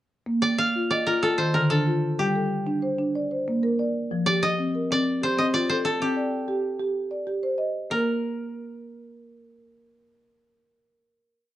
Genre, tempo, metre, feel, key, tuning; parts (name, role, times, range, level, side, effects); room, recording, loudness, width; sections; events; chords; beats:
southern african traditional, mbira-style interlocking cycle; 126 BPM (dotted quarters); 12/8; straight; Bb major; A4 = 440 Hz
marimba with soft mallets; arpeggios; 0.3-11.6 s; D3 to Bb5; -24 LUFS; equal
koto; melody; 0.4-11.6 s; G4 to F5; -26 LUFS; equal
moderate studio reverb, RT60 0.6 s; worn, warbling old tape, cassette tape, warbly pitch drift; -22 LUFS; side -13 dB against mid
0.3-7.9 A section; 7.9-11.6 final note
0.3 Bb5; 1.2 Dm; 2.2 G5; 3.1 Bb; 4.1 F; 6.0 Cm; 7.9 N.C.
| 0.27 0.75 1.23 1.71 | 2.19 2.67 3.15 3.62 | 4.10 4.58 5.06 5.54 | 6.01 6.49 6.96 7.43 | 7.90 8.38 8.85 9.32 | 9.79 10.26 10.73 11.20